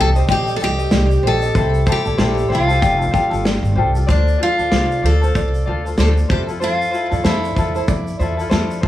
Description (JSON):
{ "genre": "acoustic pop", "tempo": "95 BPM", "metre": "4/4", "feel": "swing 60% on 16ths", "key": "F major", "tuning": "A4 = 440 Hz", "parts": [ { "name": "picked steel-string acoustic guitar", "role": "melody", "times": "0.0-8.5 s", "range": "D4 to A4", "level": "-20 LUFS", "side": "equal", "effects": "plate reverb, digital delay" }, { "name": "tenor ukulele", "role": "accompaniment", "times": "0.0-8.9 s", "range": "C4 to Eb5", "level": "-23 LUFS", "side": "left 5 dB", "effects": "plate reverb" }, { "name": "upright bass", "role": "bass", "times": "0.0-8.9 s", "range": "F1 to F2", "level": "-18 LUFS", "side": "equal", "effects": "none" }, { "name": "fingerpicked steel-string acoustic guitar", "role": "arpeggios", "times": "0.2-8.9 s", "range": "C5 to F5", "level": "-29 LUFS", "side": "right 5 dB", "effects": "plate reverb, digital delay" }, { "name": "loose indie drum kit", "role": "drums", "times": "0.2-8.9 s", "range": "kick drum, shaker, snare drum", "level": "-21 LUFS", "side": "equal", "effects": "none" } ], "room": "light reverb", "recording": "studio ambience", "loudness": "-15 LUFS", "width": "side -13 dB against mid", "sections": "0.0-4.1 A section; 4.1-8.9 B section", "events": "none", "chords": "0.0 Cm; 1.6 Am7/C; 2.8 Fadd9; 4.1 Dm7; 6.3 Fmaj7" }